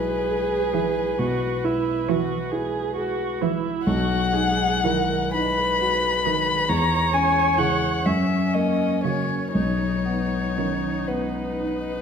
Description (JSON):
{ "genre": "classical, slow romantic movement for piano quartet", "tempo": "38-46 BPM (dotted quarters)", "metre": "12/8", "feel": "rubato", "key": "B major", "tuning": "A4 = 441 Hz", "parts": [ { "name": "dark violin", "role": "melody", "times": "0.0-12.0 s", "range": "B4 to B5", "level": "-25 LUFS", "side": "left 5 dB", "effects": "none" }, { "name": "dark concert grand piano", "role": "accompaniment", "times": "0.0-12.0 s", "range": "B1 to G#4", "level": "-25 LUFS", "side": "left 1 dB", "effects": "none" }, { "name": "warm viola", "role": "accompaniment", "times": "0.0-12.0 s", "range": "C#4 to C#5", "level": "-27 LUFS", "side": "right 6 dB", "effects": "none" }, { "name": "rich cello", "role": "second line", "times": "0.7-11.0 s", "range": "C#3 to E3", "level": "-28 LUFS", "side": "right 8 dB", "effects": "none" } ], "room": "wet recital hall reverb, RT60 1.4 s", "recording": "none", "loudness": "-20 LUFS", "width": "side -7 dB against mid", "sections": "0.0-12.0 A section", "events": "none", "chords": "0.0 E/B; 3.9 B; 6.7 C#m/E; 8.1 F#; 9.5 B" }